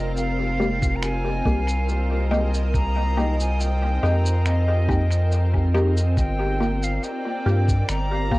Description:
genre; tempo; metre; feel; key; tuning
ambient dub; 70 BPM; 4/4; straight; F dorian; A4 = 440 Hz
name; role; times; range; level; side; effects
silver concert flute; melody; 0.0-8.4 s; Eb5 to Bb5; -30 LUFS; equal; cassette tape, dub echo
soft additive organ-like pad; sustained chords; 0.0-8.4 s; C4 to Eb5; -30 LUFS; right 1 dB; ensemble chorus, built-in reverb
soft dub sub bass; bass; 0.0-8.4 s; F1 to G2; -21 LUFS; equal; none
electronic cabasa and finger snaps; drums; 0.2-8.1 s; none; -34 LUFS; equal; cassette tape, dub echo
filtered dub chord stab; stabs; 0.6-8.4 s; Ab3 to G4; -28 LUFS; left 1 dB; phaser, dub echo
electronic kick drum; drums; 0.8-8.4 s; none; -23 LUFS; equal; cassette tape
room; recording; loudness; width
moderate small room reverb, RT60 0.5 s; home recording on cassette; -19 LUFS; side -19 dB against mid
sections
0.0-8.4 A section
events
none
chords
0.0 Fm11; 6.2 Gm7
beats
0.17 1.03 1.89 | 2.74 3.60 4.46 5.32 | 6.17 7.03 7.89

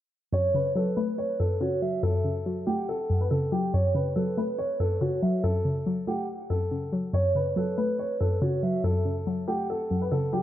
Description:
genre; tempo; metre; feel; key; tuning
hip hop; 141 BPM; 4/4; half-time; F# phrygian; A4 = 440 Hz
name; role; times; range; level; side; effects
dark grand piano; melody; 0.3-10.4 s; F#4 to C#5; -29 LUFS; left 1 dB; none
hollow clarinet-like synth lead; second line; 0.3-10.1 s; B4 to F#5; -34 LUFS; right 4 dB; chorus, digital delay
warbly dusty pluck; accompaniment; 0.3-10.4 s; F#2 to A3; -27 LUFS; left 1 dB; chorus
room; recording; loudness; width
light reverb, studio reverb; dark, warm production, low-pass filter; -24 LUFS; side -12 dB against mid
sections
0.3-10.4 A section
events
none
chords
0.3 F#m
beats
| 0.33 0.76 1.18 1.61 | 2.03 2.46 2.88 3.31 | 3.73 4.16 4.59 5.01 | 5.44 5.86 6.29 6.71 | 7.14 7.56 7.99 8.42 | 8.84 9.27 9.69 10.12

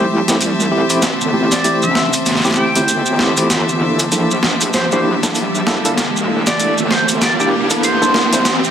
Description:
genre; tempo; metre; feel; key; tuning
glitch hop; 97 BPM; 4/4; swing 59% on 16ths; G dorian; A4 = 440 Hz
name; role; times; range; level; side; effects
sync lead; melody; 0.0-8.5 s; C5 to G5; -20 LUFS; equal; chorus, digital delay
warbly tape-like pad; sustained chords; 0.0-8.7 s; E3 to G4; -23 LUFS; equal; chorus, built-in reverb
tine electric piano; stabs; 0.0-8.4 s; A3 to C5; -19 LUFS; equal; fast tremolo, low-pass filter, digital delay
wobble bass; bass; 0.0-8.7 s; E1 to C2; -22 LUFS; equal; chorus, high-pass filter
riser; sound effects; 1.0-8.7 s; none; -23 LUFS; right 2 dB; none
clear chamber string section; texture; 0.0-8.7 s; G4 to A5; -23 LUFS; left 2 dB; none
boom bap sampler-style drum kit; drums; 0.3-8.6 s; hi-hat, snare drum; -19 LUFS; equal; overdrive
maracas; percussion; 0.3-8.7 s; none; -21 LUFS; right 3 dB; none
room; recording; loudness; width
moderate small room reverb, RT60 0.5 s; dense, heavily limited modern master, vinyl crackle, high-pass filter; -12 LUFS; side -9 dB against mid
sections
0.0-8.7 A section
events
build-up 0.0-8.7; drum fill 0.0-8.7; riser 1.0-8.7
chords
0.0 Am7; 3.5 Gm69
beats
0.41 | 1.03 1.65 2.27 2.89 | 3.50 4.12 4.74 5.36 | 5.98 6.60 7.22 7.83 | 8.45

